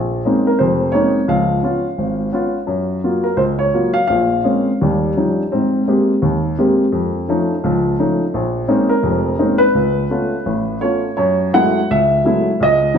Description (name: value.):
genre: solo jazz.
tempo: 170 BPM.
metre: 4/4.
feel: swing 64% on 8ths, rubato.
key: Bb minor.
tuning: A4 = 442 Hz.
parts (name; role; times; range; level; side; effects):
warm baby grand piano; solo; 0.0-13.0 s; F1 to F#5; -14 LUFS; equal; none.
room: wet recital hall reverb, RT60 1.5 s.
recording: recorded in a church or concert hall.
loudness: -14 LUFS.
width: side -7 dB against mid.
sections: 0.0-11.2 A section; 11.2-13.0 B section.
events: none.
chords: 0.0 Bbm11; 1.3 Db7; 2.7 Gbmaj7; 4.1 Bbm9; 4.8 Eb9; 5.5 Abmaj9; 7.0 Faug7; 8.3 Bbm11; 9.7 Dbaug7; 11.2 F#m11.